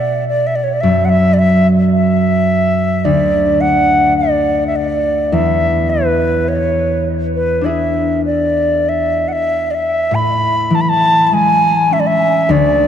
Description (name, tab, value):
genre	celtic folk, Celtic slow air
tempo	46-55 BPM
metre	4/4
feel	rubato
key	unclear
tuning	A4 = 441 Hz
part	wooden flute	melody	0.0-12.9 s	B4 to B5	-14 LUFS	equal	tape echo
part	concert harp	accompaniment	0.0-12.9 s	D2 to G#4	-15 LUFS	left 1 dB	none
room	wet cathedral reverb, RT60 4.7 s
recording	dark, warm production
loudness	-12 LUFS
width	side -9 dB against mid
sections	0.0-10.1 A section; 10.1-12.9 B section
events	none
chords	0.0 N.C.; 5.3 E7; 10.1 Amaj7